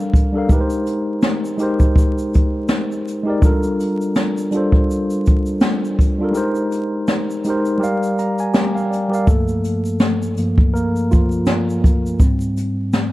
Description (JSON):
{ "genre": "lo-fi hip hop", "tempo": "82 BPM", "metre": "4/4", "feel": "swing 58% on 16ths", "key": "unclear", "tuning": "A4 = 441 Hz", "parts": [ { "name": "mellow tine electric piano", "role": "accompaniment", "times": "0.0-13.1 s", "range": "G2 to Bb5", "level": "-19 LUFS", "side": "equal", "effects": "medium stereo tremolo" }, { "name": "jazz brush drum kit", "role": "drums", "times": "0.0-13.1 s", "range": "hi-hat, kick drum, shaker, snare drum", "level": "-16 LUFS", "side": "equal", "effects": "none" } ], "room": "moderate spring reverb, RT60 2.4 s", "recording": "dark, warm production, vinyl crackle", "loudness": "-15 LUFS", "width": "side -17 dB against mid", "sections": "0.0-9.3 A section; 9.3-13.1 B section", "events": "break 6.4-9.3; tine electric piano solo 9.3-13.1", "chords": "0.5 Abmaj9; 3.4 Gm9; 6.4 Abmaj9; 7.8 Gm7; 9.3 Gm9; 12.2 Abmaj7" }